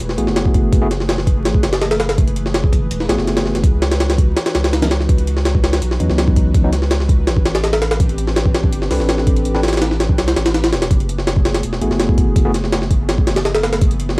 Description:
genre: drum and bass, jungle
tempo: 165 BPM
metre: 4/4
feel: straight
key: F# dorian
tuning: A4 = 439 Hz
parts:
  - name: airy breathy pad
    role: sustained chords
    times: 0.0-14.2 s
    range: E3 to B4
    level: -26 LUFS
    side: equal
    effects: chorus, cassette tape
  - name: saturated sub bass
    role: bass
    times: 0.0-14.2 s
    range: E1 to E2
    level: -20 LUFS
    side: equal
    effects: tube saturation
  - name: jungle sampler-style drum kit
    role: drums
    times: 0.0-14.2 s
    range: hi-hat, kick drum, snare drum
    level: -15 LUFS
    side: equal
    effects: overdrive
  - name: tine electric piano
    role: stabs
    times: 0.2-0.9, 3.1-6.7, 8.9-9.6, 11.8-12.5 s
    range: E3 to B4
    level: -21 LUFS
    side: equal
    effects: vintage 12-bit sampler grit, cassette tape, dub echo
room: little or no reverb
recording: home recording on cassette, vinyl crackle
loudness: -13 LUFS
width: side -26 dB against mid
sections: 0.0-14.2 A section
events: kick drops out 10.2-10.9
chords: 0.0 F#m11; 3.6 C#m11; 7.3 Am11; 10.9 F#m11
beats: 0.00 0.36 | 0.72 1.09 1.45 1.82 | 2.18 2.54 2.91 3.27 | 3.63 4.00 4.36 4.72 | 5.09 5.45 5.82 6.18 | 6.54 6.91 7.27 7.63 | 8.00 8.36 8.72 9.09 | 9.45 9.82 10.18 10.54 | 10.91 11.27 11.63 12.00 | 12.36 12.72 13.09 13.45 | 13.82 14.18

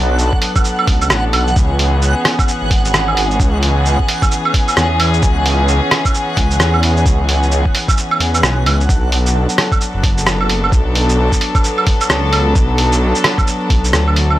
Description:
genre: future garage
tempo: 131 BPM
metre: 4/4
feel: swing 61% on 16ths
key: B dorian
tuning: A4 = 440 Hz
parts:
  - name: warm chamber string section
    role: sustained chords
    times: 0.0-14.4 s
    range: E3 to A4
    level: -18 LUFS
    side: left 1 dB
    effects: sidechain pumping
  - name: swelling detuned saw bass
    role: bass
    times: 0.0-14.4 s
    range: F#1 to E2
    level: -15 LUFS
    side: equal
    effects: sidechain pumping
  - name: backwards swelling texture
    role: texture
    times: 0.0-8.9 s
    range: F#5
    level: -24 LUFS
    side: right 3 dB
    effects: built-in reverb
  - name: lo-fi sampler-style drum kit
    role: drums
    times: 0.2-14.4 s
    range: claves, hi-hat, rim click, shaker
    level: -17 LUFS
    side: right 2 dB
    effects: small room ambience
  - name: electronic kick drum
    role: drums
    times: 0.3-13.8 s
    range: none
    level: -15 LUFS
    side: equal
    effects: small room ambience
room: little or no reverb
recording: dry, gritty hardware recording, vinyl crackle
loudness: -12 LUFS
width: side -14 dB against mid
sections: 0.0-8.9 A section; 8.9-14.4 A section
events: kick drops out 8.0-8.9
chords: 0.0 Bm7; 1.6 C#m7; 8.9 Bm7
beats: 0.19 0.65 1.10 | 1.56 2.02 2.48 2.94 | 3.39 3.85 4.31 4.77 | 5.23 5.68 6.14 6.60 | 7.06 7.52 7.97 8.43 | 8.89 9.35 9.81 10.26 | 10.72 11.18 11.64 12.10 | 12.55 13.01 13.47 13.93 | 14.39

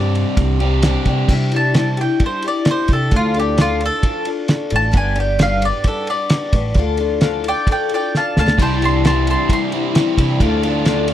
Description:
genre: folk rock and heartland rock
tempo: 132 BPM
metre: 4/4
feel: straight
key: unclear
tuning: A4 = 439 Hz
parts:
  - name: mandolin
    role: melody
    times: 0.0-10.4 s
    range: F4 to C6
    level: -20 LUFS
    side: right 1 dB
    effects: none
  - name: picked twelve-string acoustic guitar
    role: accompaniment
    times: 0.0-11.1 s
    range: G2 to B4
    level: -21 LUFS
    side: left 5 dB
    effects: none
  - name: crunchy overdriven guitar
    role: riff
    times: 0.0-1.3, 8.6-11.1 s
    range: C3 to G4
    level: -21 LUFS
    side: right 1 dB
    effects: spring reverb
  - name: upright bass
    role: bass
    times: 0.0-11.1 s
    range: G1 to C3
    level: -19 LUFS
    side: right 1 dB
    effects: none
  - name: cloth-damped thuddy drum kit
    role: drums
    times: 0.2-11.1 s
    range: crash cymbal, kick drum, ride cymbal, snare drum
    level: -19 LUFS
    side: right 1 dB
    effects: none
room: little or no reverb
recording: dry, close 1970s-style studio recording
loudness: -14 LUFS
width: side -11 dB against mid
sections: 0.0-1.3 A section; 1.3-11.1 B section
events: mandolin solo 1.3-11.1; drum fill 8.1-8.6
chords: 0.0 Csus2; 1.3 Cadd9; 3.1 Dm; 4.9 G; 6.8 Dm; 8.6 Cadd9; 10.4 Dm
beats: 0.39 0.84 | 1.30 1.76 2.21 2.67 | 3.12 3.58 4.03 4.49 | 4.95 5.40 5.86 6.31 | 6.77 7.22 7.68 8.13 | 8.59 9.04 9.50 9.95 | 10.41 10.86

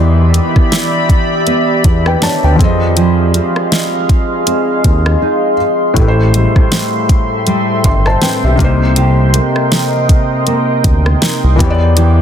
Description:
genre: contemporary R&B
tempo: 80 BPM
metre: 4/4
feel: swing 58% on 16ths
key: A minor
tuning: A4 = 439 Hz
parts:
  - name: felt-muted upright piano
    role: accompaniment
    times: 0.0-12.2 s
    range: A2 to C6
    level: -18 LUFS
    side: left 4 dB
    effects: none
  - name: deep dark ambient pad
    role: sustained chords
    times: 0.0-12.2 s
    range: G4 to D6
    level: -16 LUFS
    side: equal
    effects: chorus, built-in reverb, sidechain pumping
  - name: nylon-string guitar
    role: arpeggios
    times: 0.0-12.2 s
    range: A2 to Ab4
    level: -17 LUFS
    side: right 2 dB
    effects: digital delay
  - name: smooth synth bass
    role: bass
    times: 0.0-12.2 s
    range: G1 to F2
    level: -12 LUFS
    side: equal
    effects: none
  - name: smooth R&B drum kit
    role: drums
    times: 0.3-12.2 s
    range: hi-hat, kick drum, rim click, snare drum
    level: -12 LUFS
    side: equal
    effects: none
room: light reverb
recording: dense, heavily limited modern master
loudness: -9 LUFS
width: side -9 dB against mid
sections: 0.0-12.2 A section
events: silent gap 5.2-6.0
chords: 0.0 Em7; 2.6 Fm7; 6.0 Am7; 8.6 Cm7; 11.6 Em7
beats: 0.72 1.47 2.22 | 2.97 3.72 4.47 5.22 | 5.97 6.72 7.47 8.22 | 8.97 9.72 10.47 11.22 | 11.97

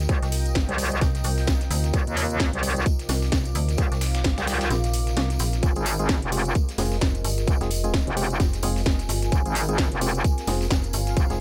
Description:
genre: bass house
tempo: 130 BPM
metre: 4/4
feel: swing 58% on 16ths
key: F dorian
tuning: A4 = 442 Hz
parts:
  - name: dark analog pad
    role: sustained chords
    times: 0.0-11.4 s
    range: C4 to G5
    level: -43 LUFS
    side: equal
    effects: none
  - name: metallic FM bass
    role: bass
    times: 0.0-11.4 s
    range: F1 to D2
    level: -27 LUFS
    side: equal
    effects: tube saturation, sidechain pumping
  - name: tambourine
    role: percussion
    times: 0.0-11.4 s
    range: none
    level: -38 LUFS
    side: equal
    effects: none
  - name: deep dark ambient pad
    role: texture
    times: 0.0-11.4 s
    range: F4 to D6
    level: -37 LUFS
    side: equal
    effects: chorus, built-in reverb, sidechain pumping
  - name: metallic wobble bass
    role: bass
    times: 0.1-11.3 s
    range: F1 to Eb2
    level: -27 LUFS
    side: equal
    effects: chorus, overdrive, sidechain pumping
  - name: dusty soul sampler-style drum kit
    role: drums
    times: 0.1-11.4 s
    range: hi-hat, snare drum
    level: -41 LUFS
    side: equal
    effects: high-pass filter on hats, high-pass filter on snare
  - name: electronic kick drum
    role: drums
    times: 0.1-11.3 s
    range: none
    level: -25 LUFS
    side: equal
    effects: none
  - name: house drum kit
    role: drums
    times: 0.1-11.4 s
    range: hi-hat, snare drum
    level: -33 LUFS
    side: equal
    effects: none
  - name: percussive organ stab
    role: stabs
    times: 5.8-11.4 s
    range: Ab3 to Ab4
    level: -34 LUFS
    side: equal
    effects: chorus, sidechain pumping, tape echo
room: digital ambience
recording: none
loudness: -24 LUFS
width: mono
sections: 0.0-11.4 A section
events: kick drops out 4.7-5.6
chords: 0.0 Cm; 5.6 Fm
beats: | 0.09 0.55 1.01 1.47 | 1.94 2.40 2.86 3.32 | 3.78 4.24 4.71 5.17 | 5.63 6.09 6.55 7.01 | 7.47 7.94 8.40 8.86 | 9.32 9.78 10.24 10.71 | 11.17

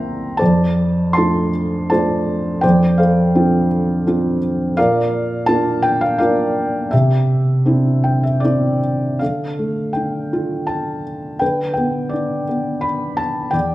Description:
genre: classical, lyrical solo piano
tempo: 75-86 BPM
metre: 3/4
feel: rubato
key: F major, D dorian from 9.2 s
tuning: A4 = 441 Hz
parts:
  - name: felt-muted upright piano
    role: solo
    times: 0.0-13.7 s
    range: C2 to C6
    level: -15 LUFS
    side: equal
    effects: none
room: moderate recital hall reverb, RT60 1.8 s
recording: minimal, uncompressed stereo recording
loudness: -15 LUFS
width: side -16 dB against mid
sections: 0.0-9.2 A section; 9.2-13.7 B section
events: felt piano fill 7.7-9.2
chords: 0.4 F6; 4.8 Bb; 6.9 Cadd9; 9.2 Dm; 11.4 Gadd9/D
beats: | 0.41 1.16 1.91 | 2.64 3.34 4.06 | 4.77 5.48 6.20 | 6.93 7.66 8.44 | 9.21 9.96 10.70 | 11.41 12.12 12.83 | 13.54

